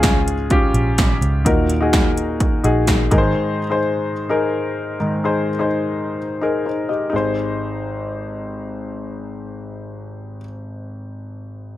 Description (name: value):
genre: piano-driven pop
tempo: 127 BPM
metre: 4/4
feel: straight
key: Ab major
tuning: A4 = 440 Hz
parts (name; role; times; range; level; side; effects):
- warm concert grand piano; accompaniment; 0.0-11.8 s; Ab1 to Eb5; -20 LUFS; left 2 dB; plate reverb
- vintage muted picked electric bass; bass; 0.0-3.3 s; Ab1 to Eb2; -21 LUFS; right 1 dB; none
- 80s electronic pad drums; drums; 0.0-3.2 s; hi-hat, kick drum, snare drum; -18 LUFS; right 1 dB; none
room: light reverb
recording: none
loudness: -17 LUFS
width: side -14 dB against mid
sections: 0.0-7.1 A section; 7.1-10.9 B section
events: none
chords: 0.0 Db; 1.5 Ebm; 3.1 Ab